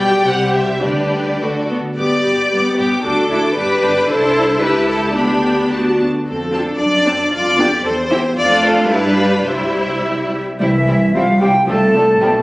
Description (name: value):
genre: quick classical-period movement for symphony orchestra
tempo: 102-116 BPM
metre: 2/4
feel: rubato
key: G major, C major from 6.3 s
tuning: A4 = 440 Hz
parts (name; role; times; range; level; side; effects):
- warm studio violin section; melody; 0.0-12.3 s; D4 to D6; -24 LUFS; left 1 dB; none
- rich chamber violin section; second line; 0.0-12.3 s; G3 to D5; -19 LUFS; left 1 dB; none
- warm studio viola section; accompaniment; 0.0-12.3 s; F3 to A4; -18 LUFS; equal; none
- dark chamber cello section; bass; 0.0-12.4 s; C2 to A4; -20 LUFS; equal; none
- warm chamber double bass section; bass; 0.0-12.4 s; G1 to G2; -24 LUFS; right 1 dB; none
- flute section; second line; 10.6-12.4 s; E5 to A5; -17 LUFS; equal; none
- mellow clarinet; second line; 10.6-12.4 s; E4 to A4; -18 LUFS; equal; none
- mellow French horn section; sustained chords; 10.6-12.4 s; E3 to A3; -19 LUFS; equal; none
room: moderate scoring stage reverb, RT60 1.9 s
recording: recorded on a phone in the room, studio reverb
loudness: -13 LUFS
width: side -20 dB against mid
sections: 0.0-2.0 A section; 2.0-10.6 B section; 10.6-12.4 A section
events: none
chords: 0.3 C; 0.8 G/D; 1.4 D; 2.0 G; 3.0 D; 3.6 G; 4.1 Am/C; 4.6 A7/C#; 5.2 G/D; 5.7 D; 6.3 F; 6.8 D7/F#; 7.3 G7/F; 7.9 C/E; 8.4 Dm/F; 8.9 G7; 9.5 C; 11.7 Dm7/C